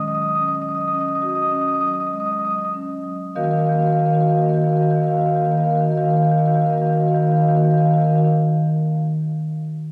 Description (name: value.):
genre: classical, contemporary piece for solo marimba.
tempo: 47-54 BPM.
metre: 4/4.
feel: straight.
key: Eb minor.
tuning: A4 = 440 Hz.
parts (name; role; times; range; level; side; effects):
marimba with soft mallets; solo; 0.0-8.3 s; Eb3 to Eb6; -19 LUFS; equal; none.
room: wet church reverb, RT60 3.4 s.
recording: none.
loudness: -19 LUFS.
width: mono.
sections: 0.0-3.4 A section; 3.4-8.4 B section.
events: slowing down 0.0-3.4.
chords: 0.0 Ebm7; 3.4 Ebmadd9.